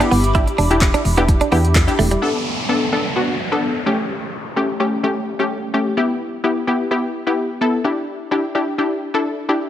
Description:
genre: dance-pop.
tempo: 128 BPM.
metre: 4/4.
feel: straight.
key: B minor.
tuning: A4 = 439 Hz.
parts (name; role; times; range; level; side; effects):
wide unison pluck; accompaniment; 0.0-9.7 s; A3 to A4; -18 LUFS; left 2 dB; sidechain pumping.
airy breathy pad; sustained chords; 0.0-2.2 s; G4 to D6; -27 LUFS; equal; chorus, sidechain pumping.
direct-recorded clean electric guitar; riff; 0.0-2.2 s; G3 to E4; -21 LUFS; right 5 dB; analog chorus.
deep house drum kit; drums; 0.0-2.2 s; handclaps, hi-hat, kick drum, snare drum; -18 LUFS; equal; none.
solid FM bass; bass; 0.1-2.2 s; E1 to E2; -18 LUFS; equal; sidechain pumping.
group handclap; percussion; 0.8-1.9 s; none; -32 LUFS; left 8 dB; none.
downlifter; sound effects; 2.2-6.0 s; none; -26 LUFS; right 1 dB; none.
room: light reverb.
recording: none.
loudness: -16 LUFS.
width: side -11 dB against mid.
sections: 0.0-2.2 A section; 2.2-9.7 B section.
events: none.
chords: 0.3 Em7; 2.2 Bm7; 3.9 A7; 6.0 G6; 7.8 Em7.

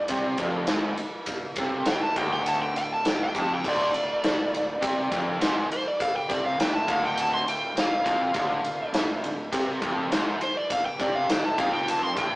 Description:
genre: blues rock power trio and southern rock.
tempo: 102 BPM.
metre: 4/4.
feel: straight.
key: D minor.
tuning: A4 = 442 Hz.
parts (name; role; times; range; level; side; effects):
overdriven slide guitar; melody; 0.0-12.4 s; C5 to C6; -27 LUFS; equal; slapback echo.
overdriven electric guitar; riff; 0.0-12.4 s; D2 to C3; -29 LUFS; equal; none.
fuzz fingered electric bass; bass; 0.0-12.4 s; D1 to C2; -38 LUFS; equal; overdrive.
big rock drum kit; drums; 0.1-12.3 s; crash cymbal, kick drum, ride cymbal, snare drum; -28 LUFS; equal; none.
overdriven tonewheel organ; sustained chords; 0.4-12.4 s; A3 to C5; -38 LUFS; right 1 dB; none.
room: moderate studio reverb, RT60 0.6 s.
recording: rough rehearsal-room recording, small speaker sound.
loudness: -23 LUFS.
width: side -21 dB against mid.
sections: 0.0-12.4 A section.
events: electric slide guitar solo 0.0-12.4.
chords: 0.0 Dm.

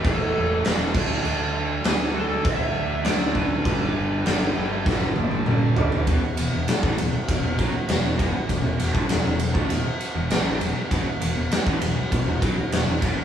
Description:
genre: hard rock.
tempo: 99 BPM.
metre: 4/4.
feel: straight.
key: E minor.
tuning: A4 = 441 Hz.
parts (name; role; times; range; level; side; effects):
lead guitar through a small cranked amp; melody; 0.0-5.4 s; A4 to E5; -30 LUFS; equal; overdrive.
overdriven tonewheel organ; sustained chords; 0.0-13.2 s; E3 to E5; -38 LUFS; equal; none.
high-gain distorted guitar; riff; 0.0-13.2 s; E2 to D4; -31 LUFS; right 5 dB; distortion.
overdriven electric guitar; riff; 0.0-13.2 s; E2 to D4; -32 LUFS; equal; none.
scooped high-gain guitar; riff; 0.0-13.2 s; E2 to D4; -31 LUFS; left 4 dB; distortion.
fuzz fingered electric bass; bass; 0.0-13.2 s; E1 to D2; -29 LUFS; equal; overdrive.
big rock drum kit; drums; 0.0-13.2 s; crash cymbal, kick drum, ride cymbal, snare drum, toms; -23 LUFS; equal; none.
room: moderate studio reverb, RT60 0.7 s.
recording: band playing live in one room, small room ambience.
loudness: -20 LUFS.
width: side -9 dB against mid.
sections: 0.0-6.1 A section; 6.1-13.2 B section.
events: drum fill 4.9-6.1.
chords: 0.0 A5/E; 0.9 D5; 3.7 G; 6.1 E5.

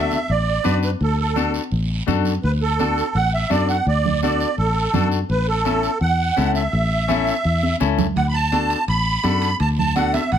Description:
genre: latin, cumbia.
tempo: 168 BPM.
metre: 4/4.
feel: straight.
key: D major.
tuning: A4 = 445 Hz.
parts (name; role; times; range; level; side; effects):
musette accordion; melody; 0.0-10.4 s; A4 to B5; -21 LUFS; right 4 dB; plate reverb.
semi-hollow electric guitar; accompaniment; 0.0-10.2 s; C#4 to B4; -24 LUFS; left 8 dB; none.
fingered electric bass; bass; 0.0-10.4 s; A1 to F#2; -21 LUFS; left 1 dB; none.
congas; percussion; 0.1-10.3 s; none; -26 LUFS; right 3 dB; none.
guiro; percussion; 0.1-10.4 s; none; -35 LUFS; right 6 dB; none.
timbales; percussion; 8.2-10.4 s; none; -35 LUFS; right 5 dB; none.
room: moderate studio reverb, RT60 0.5 s.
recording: none.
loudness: -17 LUFS.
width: side -9 dB against mid.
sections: 0.0-10.4 A section.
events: drum fill 7.6-8.2.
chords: 0.0 D; 5.3 A; 8.2 D.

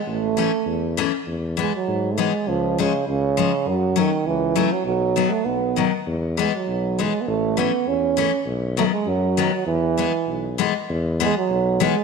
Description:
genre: alpine folk, alpine dance band.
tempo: 100 BPM.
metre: 2/4.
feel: swing 53% on 8ths, rubato.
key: E major.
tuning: A4 = 442 Hz.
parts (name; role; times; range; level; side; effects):
warm euphonium; melody; 0.1-12.0 s; C#3 to C#4; -22 LUFS; right 7 dB; none.
warm tuba; bass; 0.1-11.9 s; A1 to G#2; -26 LUFS; left 2 dB; none.
picked steel-string acoustic guitar; accompaniment; 0.4-11.9 s; D#3 to C#4; -24 LUFS; left 12 dB; none.
room: moderate echo chamber reverb, RT60 1.8 s, studio reverb.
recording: 1960s-style stereo with parts hard left and right.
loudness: -19 LUFS.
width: side -5 dB against mid.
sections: 0.0-1.3 A section; 1.3-10.9 B section; 10.9-12.0 B section.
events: none.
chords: 0.1 A; 1.3 E; 2.5 C#; 3.7 F#m; 4.9 B; 6.1 E; 7.3 A; 8.5 B; 9.7 E.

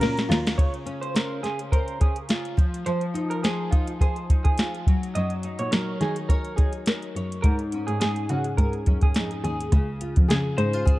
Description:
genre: indie pop, bedroom pop.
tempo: 105 BPM.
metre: 4/4.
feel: swing 55% on 16ths.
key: Db major.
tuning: A4 = 439 Hz.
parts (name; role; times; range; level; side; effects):
clean lap steel guitar; melody; 0.0-0.3, 10.3-11.0 s; Db4 to C5; -29 LUFS; left 2 dB; lush chorus, analog delay.
electric guitar through a small old amp; second line; 0.0-9.3 s; F4 to Eb5; -32 LUFS; right 3 dB; lush chorus, analog delay.
nylon-string guitar; accompaniment; 0.0-11.0 s; Ab2 to Db5; -30 LUFS; left 2 dB; analog chorus, warbly pitch drift.
dark cello; bass; 0.0-0.4, 5.2-11.0 s; Db2 to Ab3; -28 LUFS; equal; none.
soft vintage rhythm box; drums; 0.0-11.0 s; hi-hat, kick drum, ride cymbal, snare drum; -21 LUFS; equal; none.
room: little or no reverb.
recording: dark, warm production.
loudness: -22 LUFS.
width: side -18 dB against mid.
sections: 0.6-9.7 A section; 9.7-11.0 B section.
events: drum fill 0.0-0.6.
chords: 0.0 Gbmaj7; 0.6 Dbmaj7; 2.6 F5; 4.9 Gb6; 7.4 Absus4; 9.7 Dbmaj7.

